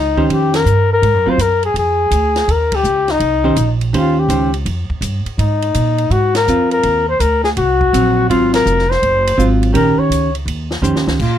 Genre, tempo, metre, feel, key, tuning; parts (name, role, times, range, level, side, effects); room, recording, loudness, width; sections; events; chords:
jazz, small-group swing and bop; 165 BPM; 4/4; swing 65% on 8ths; Eb major; A4 = 440 Hz
warm flugelhorn; melody; 0.0-11.4 s; Eb4 to Db5; -15 LUFS; left 3 dB
upright bass; bass; 0.0-11.4 s; F1 to Bb2; -17 LUFS; right 1 dB
hollow-body jazz guitar; accompaniment; 0.2-11.2 s; Eb3 to C5; -16 LUFS; right 2 dB
compact cocktail drum kit; drums; 0.2-11.3 s; crash cymbal, hi-hat, kick drum, ride cymbal, snare drum; -26 LUFS; equal
light reverb; dark, warm production; -12 LUFS; side -10 dB against mid
0.0-11.4 A section
band accent 0.5, 2.7, 6.3, 8.5; drum fill 10.8-11.2
0.0 Eb13; 1.0 Ab5; 2.5 Eb13; 5.4 Ab13; 9.7 Eb13